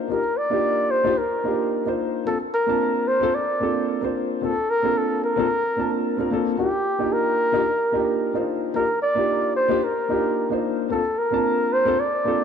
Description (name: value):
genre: chillout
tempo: 111 BPM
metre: 4/4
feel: straight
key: Bb major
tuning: A4 = 440 Hz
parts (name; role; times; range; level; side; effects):
- dark concert grand piano; accompaniment; 0.0-12.4 s; Bb3 to A5; -24 LUFS; moving between left 6 dB and right 4 dB; auto-pan
- breathy flugelhorn; melody; 0.1-12.4 s; G4 to D5; -22 LUFS; equal; digital delay
room: moderate lush hall reverb, RT60 2.4 s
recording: none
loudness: -20 LUFS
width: side -7 dB against mid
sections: 0.0-12.4 A section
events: none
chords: 0.0 Ebmaj7; 2.3 Bbmaj7; 6.6 Ebmaj7; 10.9 Bbmaj7